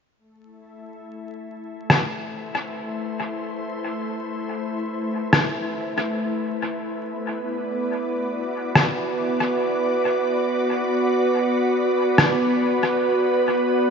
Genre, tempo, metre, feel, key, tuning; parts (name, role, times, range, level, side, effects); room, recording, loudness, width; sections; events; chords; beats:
ambient dub; free time; A dorian; A4 = 440 Hz
soft additive organ-like pad; sustained chords; 0.7-13.9 s; A3 to D5; -22 LUFS; equal; ensemble chorus, built-in reverb
electronic rim click; drums; 1.9-12.4 s; -21 LUFS; left 1 dB; overdrive, dub echo
wet lush hall reverb, RT60 2.8 s; vinyl crackle, nothing above 7.5 kHz; -20 LUFS; side -6 dB against mid
0.2-13.9 A section
fade-in on ambient pad 0.2-13.9
0.2 Amadd9; 7.0 Bm
free time